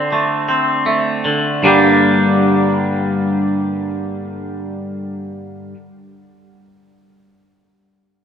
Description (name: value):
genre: rock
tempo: 75-83 BPM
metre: 4/4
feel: straight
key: G minor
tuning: A4 = 440 Hz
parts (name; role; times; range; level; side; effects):
- twangy electric guitar; arpeggios; 0.0-5.8 s; G2 to G4; -14 LUFS; equal; phaser, slapback echo
room: wet huge ambient reverb, RT60 4.8 s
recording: none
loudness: -14 LUFS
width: side -8 dB against mid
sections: 0.0-1.6 A section; 1.6-4.8 B section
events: slowing down 0.0-1.6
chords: 0.0 D5; 1.6 Gm